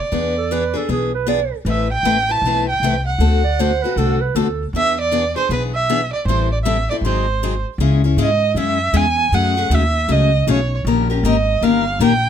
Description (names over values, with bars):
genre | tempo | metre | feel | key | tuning
acoustic string swing (jazz manouche) | 157 BPM | 4/4 | swing 62% on 8ths | A minor, C# minor from 7.8 s | A4 = 440 Hz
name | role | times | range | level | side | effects
rich erhu | melody | 0.0-12.3 s | B4 to A5 | -19 LUFS | right 4 dB | none
picked steel-string acoustic guitar | accompaniment | 0.1-12.1 s | C#3 to B4 | -20 LUFS | left 7 dB | none
upright bass | bass | 0.1-12.3 s | G1 to G#2 | -20 LUFS | equal | none
breathy clarinet | second line | 0.4-4.7 s | G#4 to D5 | -21 LUFS | right 10 dB | none
room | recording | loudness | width
light reverb | close, detailed microphones | -15 LUFS | side -9 dB against mid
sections
0.0-7.8 A section; 7.8-12.3 B section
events
none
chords
0.1 E7; 1.7 Amadd9; 3.2 D7; 4.7 E7; 6.3 Am7; 7.0 G#7; 7.8 C#m; 9.3 F#madd9; 10.9 D#7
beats
| 0.13 0.52 0.90 1.28 | 1.67 2.05 2.43 2.81 | 3.20 3.58 3.96 4.35 | 4.73 5.11 5.50 5.88 | 6.26 6.64 7.03 7.41 | 7.79 8.18 8.56 8.94 | 9.32 9.70 10.09 10.47 | 10.85 11.23 11.62 12.00